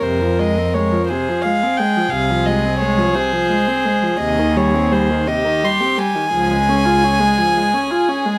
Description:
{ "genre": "classical, slow romantic movement for string quartet", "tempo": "57 BPM (dotted quarters)", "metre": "12/8", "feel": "rubato", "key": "unclear", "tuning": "A4 = 440 Hz", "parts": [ { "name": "warm violin", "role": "melody", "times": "0.0-8.4 s", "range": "C5 to C6", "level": "-21 LUFS", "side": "equal", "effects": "none" }, { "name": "warm violin", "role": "second line", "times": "0.0-8.4 s", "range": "G4 to Bb4", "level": "-25 LUFS", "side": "equal", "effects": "none" }, { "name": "dark viola", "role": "accompaniment", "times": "0.0-8.4 s", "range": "C3 to F4", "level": "-22 LUFS", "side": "equal", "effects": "none" }, { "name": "rich cello", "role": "bass", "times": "0.0-7.2 s", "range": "C2 to F2", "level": "-24 LUFS", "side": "equal", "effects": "none" } ], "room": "light reverb", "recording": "none", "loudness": "-17 LUFS", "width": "mono", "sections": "0.0-8.4 A section", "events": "none", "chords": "0.0 Fm; 4.2 Cm/Eb; 6.3 Db", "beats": "| 0.03 1.09 2.13 3.15 | 4.20 5.27 6.33 7.38" }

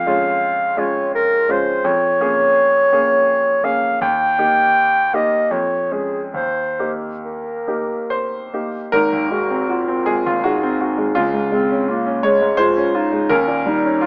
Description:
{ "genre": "classical, romantic duo for clarinet and grand piano", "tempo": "66-86 BPM", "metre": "3/4", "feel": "rubato", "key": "Ab major", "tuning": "A4 = 440 Hz", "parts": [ { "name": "mellow clarinet", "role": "melody", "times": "0.0-14.1 s", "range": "Ab3 to G5", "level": "-20 LUFS", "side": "equal", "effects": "none" }, { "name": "bright concert grand piano", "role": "accompaniment", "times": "0.0-14.1 s", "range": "Ab1 to Db5", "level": "-22 LUFS", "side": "equal", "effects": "none" } ], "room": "light reverb", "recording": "small speaker sound", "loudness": "-18 LUFS", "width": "mono", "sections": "0.0-8.9 A section; 8.9-14.1 B section", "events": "none", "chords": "0.0 Db/F; 1.9 Bbm7/F; 4.0 Eb; 5.5 Db/F; 6.4 Eb; 8.9 Ab7; 11.2 Db; 13.3 Eb7", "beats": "0.43 1.14 | 1.85 2.57 3.29 | 4.01 4.76 5.52 | 6.36 7.25 8.11 | 8.94 9.69 10.44 | 11.16 11.88 12.58 | 13.30 14.02" }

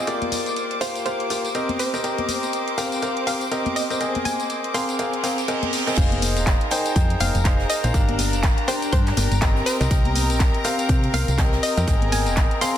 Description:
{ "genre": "piano house", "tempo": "122 BPM", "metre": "4/4", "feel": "swing 58% on 16ths", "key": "F dorian", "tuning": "A4 = 439 Hz", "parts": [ { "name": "clear studio violin section", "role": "sustained chords", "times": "0.0-12.8 s", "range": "Bb4 to D6", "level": "-30 LUFS", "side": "left 1 dB", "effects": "sidechain pumping" }, { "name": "bright concert grand piano", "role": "riff", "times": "0.0-12.8 s", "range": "Bb3 to G5", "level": "-25 LUFS", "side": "left 1 dB", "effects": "sidechain pumping, dub echo" }, { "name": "house drum kit", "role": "drums", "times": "0.1-12.7 s", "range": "crash cymbal, handclaps, hi-hat, tambourine", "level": "-28 LUFS", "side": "left 1 dB", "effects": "studio reverb" }, { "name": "tambourine and congas", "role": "percussion", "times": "0.1-12.8 s", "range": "none", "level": "-33 LUFS", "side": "left 4 dB", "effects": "none" }, { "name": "hollow square pluck", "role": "melody", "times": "0.8-12.8 s", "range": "C5 to C6", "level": "-30 LUFS", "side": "equal", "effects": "chorus, dub echo" }, { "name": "reverse cymbal", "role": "sound effects", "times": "5.2-6.0 s", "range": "none", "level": "-30 LUFS", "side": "right 5 dB", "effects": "none" }, { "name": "solid FM bass", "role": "bass", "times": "6.0-12.5 s", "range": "Eb1 to C3", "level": "-23 LUFS", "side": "equal", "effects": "sidechain pumping" }, { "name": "electronic kick drum", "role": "drums", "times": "6.0-12.5 s", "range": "none", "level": "-20 LUFS", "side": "equal", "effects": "studio reverb" }, { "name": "jazz brush drum kit", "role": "drums", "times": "6.0-12.8 s", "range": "hi-hat, snare drum", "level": "-36 LUFS", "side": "right 3 dB", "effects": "high-pass filter on hats, studio reverb, soft clipping on snare, high-pass filter on snare, high-pass filter on room" } ], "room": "light reverb, studio reverb", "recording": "dense, heavily limited modern master", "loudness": "-19 LUFS", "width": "side -11 dB against mid", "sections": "0.0-6.0 A section; 6.0-12.8 B section", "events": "reverse cymbal 5.2-6.0; drop 6.0-12.8", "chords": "0.1 Gm7; 1.8 Cm7; 4.0 Abadd9; 6.0 Fm7; 7.9 Gm7; 9.7 Cm7; 11.9 Abadd9", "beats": "| 0.07 0.56 1.06 1.55 | 2.04 2.53 3.02 3.52 | 4.01 4.50 4.99 5.48 | 5.97 6.47 6.96 7.45 | 7.94 8.43 8.93 9.42 | 9.91 10.40 10.89 11.38 | 11.88 12.37" }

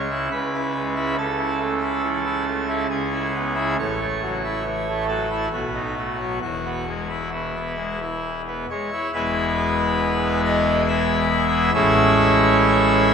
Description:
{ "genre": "classical, chorale-style piece for pipe organ", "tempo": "69 BPM", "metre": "3/4", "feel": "rubato", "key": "E major from 3.8 s", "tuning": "A4 = 437 Hz", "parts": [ { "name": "pipe organ, full organ", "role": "solo", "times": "0.0-13.1 s", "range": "E1 to E5", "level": "-19 LUFS", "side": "equal", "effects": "none" } ], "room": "wet church reverb, RT60 3.6 s", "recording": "minimal, uncompressed stereo recording", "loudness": "-19 LUFS", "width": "side -6 dB against mid", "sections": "0.0-9.1 A section; 9.1-13.1 B section", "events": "none", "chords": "0.0 C#m; 1.2 A/C#; 2.9 E/C#; 3.8 F#m7/A; 5.5 B7; 6.4 E; 11.7 Amaj7", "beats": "0.33 | 1.19 2.05 2.91 | 3.79 4.65 5.52 | 6.41 7.32 8.22 | 9.13 10.00 10.87 | 11.74 12.60" }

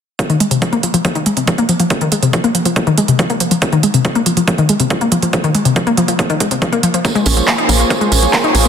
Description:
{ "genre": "uplifting trance", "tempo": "140 BPM", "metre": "4/4", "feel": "straight", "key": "unclear", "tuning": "A4 = 441 Hz", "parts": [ { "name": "analog pluck", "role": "arpeggios", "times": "0.2-8.7 s", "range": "C3 to Eb4", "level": "-14 LUFS", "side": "left 2 dB", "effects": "chorus, vintage 12-bit sampler grit, sidechain pumping, dub echo" }, { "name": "big-room dance drum kit", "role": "drums", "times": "0.2-8.7 s", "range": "handclaps, hi-hat", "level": "-19 LUFS", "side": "right 4 dB", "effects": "overdrive" }, { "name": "electronic kick drum", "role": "drums", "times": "0.2-8.4 s", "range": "none", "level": "-19 LUFS", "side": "right 1 dB", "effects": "overdrive, high-pass filter on kick, high-pass filter on room" }, { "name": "lush unison pad", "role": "sustained chords", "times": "7.0-8.7 s", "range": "Bb3 to Db5", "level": "-17 LUFS", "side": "right 1 dB", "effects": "chorus, sidechain pumping" }, { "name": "tambourine", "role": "percussion", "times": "7.0-8.7 s", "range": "none", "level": "-21 LUFS", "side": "right 6 dB", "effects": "none" }, { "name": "tight sequencer bass", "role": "bass", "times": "7.3-8.7 s", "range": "Bb1", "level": "-14 LUFS", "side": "right 1 dB", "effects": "sidechain pumping" } ], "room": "moderate lush hall reverb, RT60 2.0 s", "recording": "dense, heavily limited modern master", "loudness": "-12 LUFS", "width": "side -8 dB against mid", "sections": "0.2-8.7 A section", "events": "filter sweep on synth arpeggio sound 0.2-8.7", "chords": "0.2 N.C.; 7.0 Bbm7", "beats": "| 0.19 0.62 1.05 1.48 | 1.91 2.33 2.76 3.19 | 3.62 4.05 4.48 4.91 | 5.33 5.76 6.19 6.62 | 7.05 7.48 7.91 8.33" }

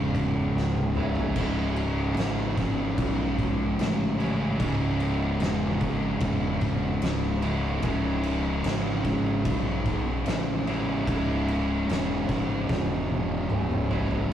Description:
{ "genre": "stoner and doom metal", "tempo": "74 BPM", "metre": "4/4", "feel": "straight", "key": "C# minor", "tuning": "A4 = 440 Hz", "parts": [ { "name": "sludgy distorted guitar", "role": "riff", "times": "0.0-14.3 s", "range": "C#2 to E4", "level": "-32 LUFS", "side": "right 1 dB", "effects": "overdrive" }, { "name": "thick fuzz guitar", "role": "riff", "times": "0.0-14.3 s", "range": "C#2 to C#3", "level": "-31 LUFS", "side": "left 3 dB", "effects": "distortion" }, { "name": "thick fuzz guitar", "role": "riff", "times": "0.0-14.3 s", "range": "C#2 to C#3", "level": "-31 LUFS", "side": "right 3 dB", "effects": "distortion" }, { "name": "fuzz fingered electric bass", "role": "bass", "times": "0.0-14.3 s", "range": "C#1 to B1", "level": "-30 LUFS", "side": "equal", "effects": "overdrive, tube saturation" }, { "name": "oversized low-tuned drum kit", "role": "drums", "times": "0.1-14.3 s", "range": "crash cymbal, kick drum, snare drum, toms", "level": "-30 LUFS", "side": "equal", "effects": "none" } ], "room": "moderate small room ambience, RT60 0.5 s", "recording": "rough rehearsal-room recording, warm saturation", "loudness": "-24 LUFS", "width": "side -10 dB against mid", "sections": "0.0-14.3 A section", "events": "drum fill 0.6-1.4, 12.7-14.3", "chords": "0.0 C#m", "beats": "0.56 | 1.37 2.18 2.98 3.79 | 4.60 5.41 6.22 7.03 | 7.84 8.65 9.46 10.27 | 11.08 11.89 12.71 13.52" }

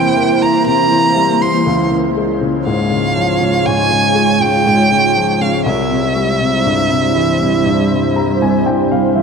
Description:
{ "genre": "pop", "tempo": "60 BPM", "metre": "4/4", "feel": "straight", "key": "unclear", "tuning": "A4 = 442 Hz", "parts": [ { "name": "rich violin", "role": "melody", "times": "0.0-8.6 s", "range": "E5 to C6", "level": "-16 LUFS", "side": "right 3 dB", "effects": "none" }, { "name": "warm baby grand piano", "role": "accompaniment", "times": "0.0-9.2 s", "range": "C2 to Bb5", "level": "-17 LUFS", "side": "left 5 dB", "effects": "none" }, { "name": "shimmering ambient pad", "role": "sustained chords", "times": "0.0-9.2 s", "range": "E3 to Db5", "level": "-16 LUFS", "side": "right 3 dB", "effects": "chorus, built-in reverb" } ], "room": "moderate lush hall reverb, RT60 2.5 s", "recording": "dark, warm production", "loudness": "-11 LUFS", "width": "side -5 dB against mid", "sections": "0.0-9.2 A section", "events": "grand piano fill 7.7-9.2", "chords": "0.0 C7/E; 1.7 Db; 5.7 C", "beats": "0.66 | 1.66 2.66 3.66 4.66 | 5.66 6.66 7.66 8.66" }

